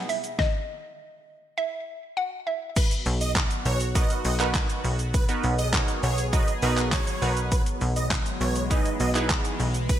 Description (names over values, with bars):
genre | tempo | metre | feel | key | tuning
dance-pop | 101 BPM | 4/4 | straight | B major | A4 = 438 Hz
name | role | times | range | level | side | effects
hollow square pluck | melody | 0.0-2.7 s | D#5 to F#5 | -30 LUFS | equal | chorus, ping-pong delay
funky polysynth comp | accompaniment | 0.0-0.1, 4.0-9.7 s | B3 to C#5 | -30 LUFS | right 3 dB | chorus, sidechain pumping
sweeping resonant pad | sustained chords | 0.0-10.0 s | B2 to D#5 | -34 LUFS | equal | chorus, sidechain pumping
pop drum kit | drums | 0.1-10.0 s | crash cymbal, handclaps, hi-hat, kick drum, shaker, snare drum | -26 LUFS | equal | gated reverb
supersaw chords | melody | 2.8-10.0 s | B4 to D#5 | -32 LUFS | right 2 dB | sidechain pumping, ping-pong delay
plucky analog bass | bass | 3.1-10.0 s | B1 | -26 LUFS | equal | sidechain pumping
room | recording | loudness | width
light reverb, digital ambience | bright 1980s-style digital production | -23 LUFS | side -11 dB against mid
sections
0.0-2.8 A section; 2.8-10.0 B section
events
build-up 0.0-2.8; drum fill 0.0-0.4; drop 2.8-10.0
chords
0.0 Emaj7/B; 2.8 Bmaj7; 7.5 Emaj7/B